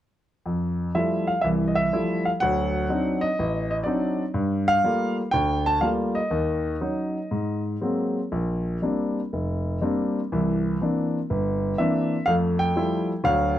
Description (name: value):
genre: solo jazz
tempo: 122 BPM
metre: 4/4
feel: swing 69% on 8ths, rubato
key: F major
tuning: A4 = 441 Hz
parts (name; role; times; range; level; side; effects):
- clear grand piano; solo; 0.5-13.6 s; F1 to A5; -22 LUFS; equal; none
room: small room ambience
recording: dry, close 1970s-style studio recording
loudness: -22 LUFS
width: side -12 dB against mid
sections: 0.4-13.6 A section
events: none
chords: 0.4 Fmaj9; 2.4 D7b9; 4.4 Gm9; 6.3 Ebm7; 7.3 Ab9; 8.3 Bb69; 10.3 C9; 12.3 Fmaj9